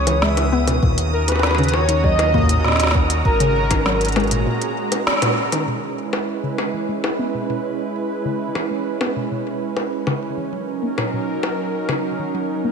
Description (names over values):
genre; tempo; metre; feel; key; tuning
IDM; 99 BPM; 4/4; straight; C# dorian; A4 = 440 Hz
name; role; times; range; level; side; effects
warm velvety synth lead; melody; 0.0-4.1 s; A#4 to E5; -23 LUFS; equal; chorus, cassette tape, ping-pong delay
warm analog pad; sustained chords; 0.0-12.7 s; D#3 to A#5; -24 LUFS; right 4 dB; chorus
round analog bass; bass; 0.0-4.5 s; G#1 to D#2; -21 LUFS; equal; tube saturation
bubbling stepped-filter texture; texture; 0.0-5.7 s; D#6; -32 LUFS; equal; chorus, built-in reverb
warbly dusty pluck; arpeggios; 0.1-12.7 s; A#2 to B3; -25 LUFS; left 3 dB; chorus, tape echo
organic electronic drum kit; drums; 0.1-12.0 s; bongos, hi-hat, snare drum; -23 LUFS; left 1 dB; low-pass filter on hats, low-pass filter on perc, low-pass filter on snare, low-pass filter on room
electronic kick drum; drums; 0.8-3.8 s; none; -20 LUFS; equal; none
room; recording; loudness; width
moderate lush hall reverb, RT60 2.5 s; big arena sound; -18 LUFS; side -6 dB against mid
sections
0.0-5.7 A section; 5.7-12.7 B section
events
break 4.5-5.7; band accent 5.1-5.4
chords
0.0 C#m7; 0.8 D#m7; 3.3 G#9sus4; 5.7 C#m7; 10.5 D#m7